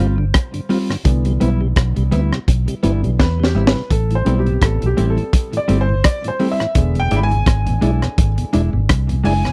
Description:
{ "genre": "roots reggae", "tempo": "84 BPM", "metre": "4/4", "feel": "swing 56% on 16ths", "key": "A minor", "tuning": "A4 = 440 Hz", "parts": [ { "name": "mellow electric guitar", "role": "accompaniment", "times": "0.0-9.4 s", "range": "G3 to F4", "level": "-24 LUFS", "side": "equal", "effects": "tape echo" }, { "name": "mellow tonewheel organ", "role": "accompaniment", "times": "0.0-9.5 s", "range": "E2 to G4", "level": "-25 LUFS", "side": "equal", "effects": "slow rotary speaker" }, { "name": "warm upright piano", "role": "stabs", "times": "0.0-9.5 s", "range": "D3 to B5", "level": "-26 LUFS", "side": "equal", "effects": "none" }, { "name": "vintage muted fingered electric bass", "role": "bass", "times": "0.0-9.4 s", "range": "E1 to E2", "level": "-20 LUFS", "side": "equal", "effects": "none" }, { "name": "crunchy breakbeat drum kit", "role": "drums", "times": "0.3-9.5 s", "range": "hi-hat, kick drum, rim click, snare drum", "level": "-19 LUFS", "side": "equal", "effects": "none" } ], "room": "little or no reverb", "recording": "dry, close 1970s-style studio recording", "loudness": "-17 LUFS", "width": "mono", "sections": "0.0-9.5 A section", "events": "upright piano solo 0.0-9.5; drum fill 3.2-3.9", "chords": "0.0 G7sus4; 1.1 Cmaj7; 3.9 Am7; 6.8 E7", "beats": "0.34 | 1.05 1.77 2.48 3.19 | 3.90 4.62 5.33 6.04 | 6.75 7.46 8.18 8.89" }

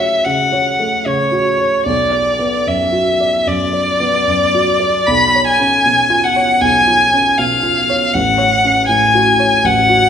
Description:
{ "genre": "classical, romantic duo for violin and grand piano", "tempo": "73-80 BPM", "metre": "4/4", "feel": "rubato", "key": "F# minor", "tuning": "A4 = 440 Hz", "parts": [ { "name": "rich violin", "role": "melody", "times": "0.0-10.1 s", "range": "C#5 to B5", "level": "-12 LUFS", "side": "left 1 dB", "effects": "none" }, { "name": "dark grand piano", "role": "accompaniment", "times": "0.0-10.1 s", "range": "A1 to D5", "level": "-18 LUFS", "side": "right 2 dB", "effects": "none" } ], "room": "wet recital hall reverb, RT60 1.5 s", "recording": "minimal, uncompressed stereo recording", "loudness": "-11 LUFS", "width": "side -8 dB against mid", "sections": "0.0-10.1 A section", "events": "none", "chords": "0.0 F#m; 1.9 Bm; 5.1 C#7/B; 8.1 F#m/A", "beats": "0.26 1.06 | 1.85 2.66 3.46 4.27 | 5.07 5.84 6.60 7.38 | 8.14 8.90 9.66" }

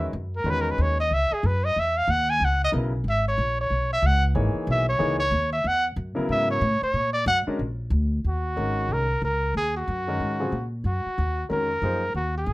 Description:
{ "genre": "modal jazz", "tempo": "185 BPM", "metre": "4/4", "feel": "swing 62% on 8ths", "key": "C# dorian, Eb dorian from 8.2 s", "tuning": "A4 = 440 Hz", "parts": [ { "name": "clear trumpet", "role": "melody", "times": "0.0-12.5 s", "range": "Gb4 to G#5", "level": "-24 LUFS", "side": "equal", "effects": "none" }, { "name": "clear concert grand piano", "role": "accompaniment", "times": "0.0-12.0 s", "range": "C#3 to C#5", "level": "-28 LUFS", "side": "left 1 dB", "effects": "none" }, { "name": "upright bass", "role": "bass", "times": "0.0-12.5 s", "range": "G#1 to A#2", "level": "-26 LUFS", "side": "equal", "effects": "none" } ], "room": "moderate studio ambience, RT60 0.5 s", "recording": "rough home demo mix", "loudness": "-22 LUFS", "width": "side -19 dB against mid", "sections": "0.0-8.2 A section; 8.2-12.5 B section", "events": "trumpet solo 0.0-8.2", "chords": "0.0 C#m11; 6.9 A#aug; 8.2 Ebm11", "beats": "0.14 | 0.46 0.79 1.11 1.43 | 1.76 2.08 2.41 2.73 | 3.05 3.38 3.70 4.03 | 4.35 4.67 5.00 5.32 | 5.65 5.97 6.30 6.62 | 6.95 7.27 7.59 7.92 | 8.24 8.57 8.89 9.22 | 9.55 9.87 10.20 10.52 | 10.85 11.18 11.50 11.83 | 12.15 12.48" }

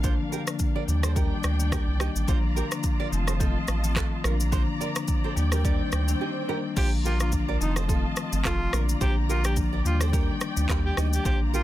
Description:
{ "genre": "afrobeats", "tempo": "107 BPM", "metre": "4/4", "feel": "swing 55% on 16ths", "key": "Bb major", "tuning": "A4 = 440 Hz", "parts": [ { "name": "marimba with soft mallets", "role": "accompaniment", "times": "0.0-11.6 s", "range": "D3 to D4", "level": "-31 LUFS", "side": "left 6 dB", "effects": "none" }, { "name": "muted studio string section", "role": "sustained chords", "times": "0.0-11.6 s", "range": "Eb3 to Bb5", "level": "-36 LUFS", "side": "equal", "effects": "none" }, { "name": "nylon-string guitar", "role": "riff", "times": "0.0-11.6 s", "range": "Eb4 to D5", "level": "-35 LUFS", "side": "right 10 dB", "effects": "tape echo" }, { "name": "round analog bass", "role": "bass", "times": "0.0-11.6 s", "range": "F1 to Eb2", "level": "-26 LUFS", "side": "equal", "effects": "none" }, { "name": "afro-pop drum kit", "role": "drums", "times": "0.0-11.6 s", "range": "crash cymbal, handclaps, kick drum, rim click, shaker", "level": "-27 LUFS", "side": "equal", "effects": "soft clipping on snare" }, { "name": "swell", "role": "sound effects", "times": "5.1-6.8 s", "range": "none", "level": "-38 LUFS", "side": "right 3 dB", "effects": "none" }, { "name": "breathy alto saxophone", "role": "melody", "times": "6.8-11.6 s", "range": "Eb4 to G4", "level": "-32 LUFS", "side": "right 1 dB", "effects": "tape echo" } ], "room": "little or no reverb", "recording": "dense, heavily limited modern master", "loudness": "-23 LUFS", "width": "side -14 dB against mid", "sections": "0.0-6.8 A section; 6.8-11.6 B section", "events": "swell 5.1-6.8; break 6.2-6.8", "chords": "0.0 Bb; 0.9 Ebmaj7; 2.3 Bb; 3.1 F7; 4.2 Bb; 5.4 Ebmaj7; 6.8 Bb; 7.6 F7; 8.7 Bb; 9.9 Ebmaj7", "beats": "| 0.04 0.60 1.16 1.72 | 2.28 2.84 3.40 3.96 | 4.53 5.08 5.65 6.21 | 6.77 7.33 7.89 8.45 | 9.01 9.57 10.13 10.69 | 11.25" }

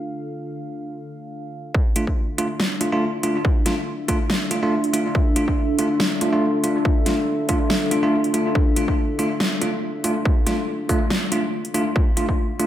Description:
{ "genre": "deep dubstep", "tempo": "141 BPM", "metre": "4/4", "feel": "swing 55% on 16ths, half-time", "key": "D minor", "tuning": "A4 = 440 Hz", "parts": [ { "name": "dark analog pad", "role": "sustained chords", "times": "0.0-12.7 s", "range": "D4 to F5", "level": "-26 LUFS", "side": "equal", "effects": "chorus, phaser, vintage 12-bit sampler grit" }, { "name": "electronic kick drum", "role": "drums", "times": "1.7-12.4 s", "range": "none", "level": "-20 LUFS", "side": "equal", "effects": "distortion" }, { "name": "bell-like tine electric piano", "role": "stabs", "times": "2.0-12.7 s", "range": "A3 to F4", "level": "-23 LUFS", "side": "equal", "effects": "dub echo" }, { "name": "dubstep drum kit", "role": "drums", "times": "2.0-12.7 s", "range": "hi-hat, snare drum", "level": "-25 LUFS", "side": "equal", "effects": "none" } ], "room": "wet plate reverb, RT60 1.5 s, digital ambience", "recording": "dreamy mix soaked in reverb", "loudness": "-18 LUFS", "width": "side -12 dB against mid", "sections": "0.0-1.7 A section; 1.7-12.7 B section", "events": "build-up 1.7-12.7", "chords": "0.0 Dm", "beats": "| 0.04 0.47 0.89 1.32 | 1.75 2.17 2.60 3.02 | 3.45 3.87 4.30 4.72 | 5.15 5.58 6.00 6.43 | 6.85 7.28 7.70 8.13 | 8.55 8.98 9.40 9.83 | 10.26 10.68 11.11 11.53 | 11.96 12.38" }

